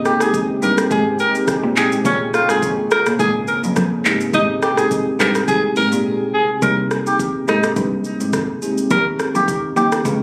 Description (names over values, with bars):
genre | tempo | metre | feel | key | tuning
afrobeats | 105 BPM | 4/4 | swing 55% on 16ths | unclear | A4 = 445 Hz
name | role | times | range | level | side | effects
deep dark ambient pad | sustained chords | 0.0-10.2 s | C3 to Ab4 | -30 LUFS | equal | chorus, built-in reverb
rich cello | bass | 0.0-10.2 s | C2 to Bb2 | -24 LUFS | equal | none
raspy alto saxophone | melody | 0.1-9.9 s | Db4 to Bb4 | -22 LUFS | equal | tape echo
afro-pop drum kit | drums | 0.1-10.2 s | handclaps, hi-hat, kick drum, rim click, shaker, toms | -24 LUFS | equal | none
marimba with medium mallets | accompaniment | 0.2-10.2 s | Ab3 to Ab4 | -24 LUFS | equal | none
room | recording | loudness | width
light reverb, studio ambience | recorded on a phone in the room, club reverb, compression | -17 LUFS | mono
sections
0.0-6.6 A section; 6.6-10.2 B section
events
break 6.1-6.6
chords
0.0 Abmaj7; 2.1 Bbm7; 4.1 Abmaj7; 6.6 Cm7; 7.5 Abmaj7; 8.9 Eb7